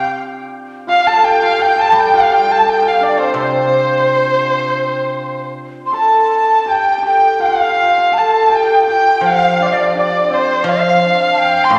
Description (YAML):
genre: chinese traditional, Chinese chamber ensemble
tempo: 84 BPM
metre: 4/4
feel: rubato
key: C zhi mode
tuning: A4 = 442 Hz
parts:
  - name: dark erhu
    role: melody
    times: 0.0-11.8 s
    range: C5 to C6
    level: -17 LUFS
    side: equal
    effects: none
  - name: breathy mellow dizi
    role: second line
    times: 0.0-11.8 s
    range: C5 to C6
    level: -18 LUFS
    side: equal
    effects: none
  - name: hammered dulcimer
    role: second line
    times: 0.0-11.8 s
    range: C4 to A4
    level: -23 LUFS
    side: equal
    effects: none
  - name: guzheng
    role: accompaniment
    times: 1.9-11.8 s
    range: A2 to G3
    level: -22 LUFS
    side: equal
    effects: none
room: wet concert hall reverb, RT60 2.3 s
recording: none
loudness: -13 LUFS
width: mono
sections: 0.0-6.3 A section; 6.3-11.8 B section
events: none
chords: none